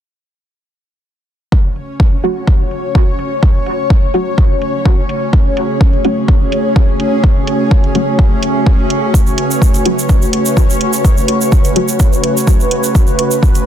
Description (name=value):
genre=dub techno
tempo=126 BPM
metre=4/4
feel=straight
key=F# minor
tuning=A4 = 440 Hz
part: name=airy breathy pad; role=sustained chords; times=1.5-13.7 s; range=C#3 to C#5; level=-18 LUFS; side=equal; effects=chorus, sidechain pumping
part: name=electronic kick drum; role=drums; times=1.5-13.5 s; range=none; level=-10 LUFS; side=equal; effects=overdrive
part: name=bubbling stepped-filter texture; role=texture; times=1.9-13.7 s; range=C#4 to C#5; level=-20 LUFS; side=equal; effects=chorus, built-in reverb, sidechain pumping
part: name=electronic hi-hat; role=drums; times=1.8-13.6 s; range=none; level=-20 LUFS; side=right 3 dB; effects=low-pass filter on hats
part: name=deep mellow chord stab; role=stabs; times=2.2-11.9 s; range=F#3 to F#4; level=-21 LUFS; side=equal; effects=chorus, phaser, sidechain pumping, dub echo
part: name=egg shaker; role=percussion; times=9.1-13.6 s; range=none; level=-22 LUFS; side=right 5 dB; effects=none
room=little or no reverb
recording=dense, heavily limited modern master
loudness=-10 LUFS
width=side -10 dB against mid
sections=1.5-13.7 A section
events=filter sweep on synth stab 1.5-13.7; filter sweep on analog synth pad 1.5-13.7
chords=1.5 F#m